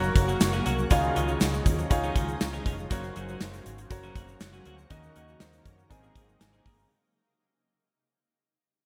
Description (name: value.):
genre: 1980s-style pop.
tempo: 120 BPM.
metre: 4/4.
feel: straight.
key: unclear.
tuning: A4 = 440 Hz.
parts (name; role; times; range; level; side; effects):
clear baby grand piano; accompaniment; 0.0-6.9 s; Ab2 to Bb5; -34 LUFS; equal; lush chorus.
shimmering ambient pad; sustained chords; 0.0-6.9 s; Db3 to Gb4; -40 LUFS; equal; chorus, built-in reverb.
twelve-string electric guitar; riff; 0.0-6.8 s; Eb3 to Ab4; -39 LUFS; equal; subtle chorus.
mellow synth brass; stabs; 0.0-6.9 s; C4 to Db5; -42 LUFS; equal; chorus.
vintage muted fingered electric bass; bass; 0.0-6.8 s; F1 to Gb2; -35 LUFS; equal; none.
egg shaker; percussion; 0.0-6.9 s; none; -52 LUFS; equal; none.
gated 80s drum kit; drums; 0.2-6.8 s; hi-hat, kick drum, snare drum, tambourine; -29 LUFS; equal; gated reverb.
room: moderate lush hall reverb, RT60 2.4 s.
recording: bright 1980s-style digital production.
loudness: -27 LUFS.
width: mono.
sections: 0.0-6.9 A section.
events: fade-out 0.0-6.9; grand piano fill 6.2-6.9.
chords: 0.0 Gb; 0.9 Dbadd9; 2.9 Gb; 4.9 Ebm7; 5.9 Abadd9.